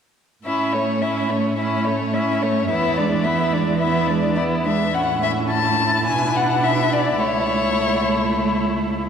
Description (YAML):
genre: quick classical-period movement for string quartet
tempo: 107 BPM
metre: 4/4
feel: straight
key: A major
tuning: A4 = 441 Hz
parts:
  - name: warm violin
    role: melody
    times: 0.4-8.6 s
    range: C#5 to A5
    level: -22 LUFS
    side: left 5 dB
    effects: none
  - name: rich cello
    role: bass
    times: 0.4-9.1 s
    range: C#2 to B2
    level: -24 LUFS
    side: right 4 dB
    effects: none
  - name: rich violin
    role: second line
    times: 0.5-9.1 s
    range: C#4 to E4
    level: -23 LUFS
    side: equal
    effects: none
  - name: rich viola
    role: accompaniment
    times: 0.5-9.1 s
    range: G#3 to D4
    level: -24 LUFS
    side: right 2 dB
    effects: none
room: wet cathedral reverb, RT60 4.4 s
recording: recorded in a church or concert hall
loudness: -18 LUFS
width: side -7 dB against mid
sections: 0.5-4.9 A section; 4.9-9.1 B section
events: none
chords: 0.5 A; 2.7 E7; 4.9 A; 6.1 E5/B; 7.2 A/C#